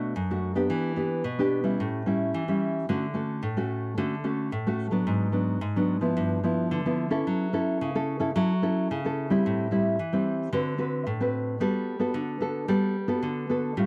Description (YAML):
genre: samba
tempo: 110 BPM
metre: 4/4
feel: straight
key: D major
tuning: A4 = 440 Hz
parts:
  - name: nylon-string guitar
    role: solo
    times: 0.0-13.9 s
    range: F#2 to B4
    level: -27 LUFS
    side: equal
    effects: none
room: light reverb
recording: dry, close 1970s-style studio recording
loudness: -27 LUFS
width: mono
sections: 0.0-2.9 A section; 2.9-13.9 B section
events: none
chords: 0.0 Bm7; 0.7 Em7; 1.8 A7; 2.9 Dmaj7; 5.1 G#m7b5; 6.2 G13; 7.3 F#m7; 9.4 Am7; 10.5 D6; 11.6 Gmaj9